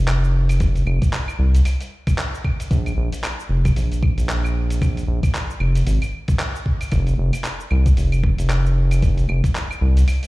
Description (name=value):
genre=organic downtempo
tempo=114 BPM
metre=4/4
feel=swing 58% on 16ths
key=F minor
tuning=A4 = 443 Hz
part: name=round analog bass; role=bass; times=0.0-10.0 s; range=F1 to C2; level=-17 LUFS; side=equal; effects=tube saturation, sidechain pumping
part: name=dusty soul sampler-style drum kit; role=drums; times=0.1-10.3 s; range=cabasa, claves, handclaps, hi-hat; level=-29 LUFS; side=equal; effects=none
part: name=electronic kick drum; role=drums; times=0.6-9.5 s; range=none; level=-19 LUFS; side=equal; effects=none
room=little or no reverb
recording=played on a big sound system in a bare room, large studio reverb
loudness=-17 LUFS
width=side -20 dB against mid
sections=0.0-10.3 A section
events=none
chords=none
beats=0.08 | 0.60 1.13 1.66 2.18 | 2.71 3.23 3.76 4.29 | 4.81 5.34 5.87 6.39 | 6.92 7.45 7.97 8.50 | 9.02 9.55 10.08